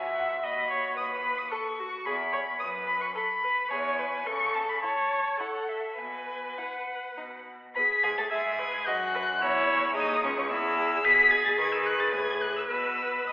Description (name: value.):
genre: quick classical-period movement for string quartet.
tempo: 100-113 BPM.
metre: 3/4.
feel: rubato.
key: E major.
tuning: A4 = 442 Hz.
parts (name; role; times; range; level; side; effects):
rich violin; melody; 0.0-13.3 s; E5 to B6; -28 LUFS; left 1 dB; none.
rich violin; second line; 0.0-13.3 s; C#4 to D#5; -33 LUFS; equal; none.
rich viola; accompaniment; 0.0-13.3 s; F#4 to E5; -30 LUFS; equal; none.
rich cello; bass; 0.0-13.3 s; C#2 to D#3; -36 LUFS; right 1 dB; none.
room: wet scoring stage reverb, RT60 1.6 s.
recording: heard from further back in the room, telephone sound.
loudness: -25 LUFS.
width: side -18 dB against mid.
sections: 0.0-7.8 A section; 7.8-13.3 B section.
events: none.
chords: 0.4 B/D#; 1.0 B7/D#; 2.1 E5; 2.6 B5/F#; 3.7 E; 4.3 A/C#; 6.0 B5; 7.8 E/G#; 8.9 B/F#; 9.4 C#m; 11.0 G#m/B; 12.1 F#madd9/A; 12.7 N.C..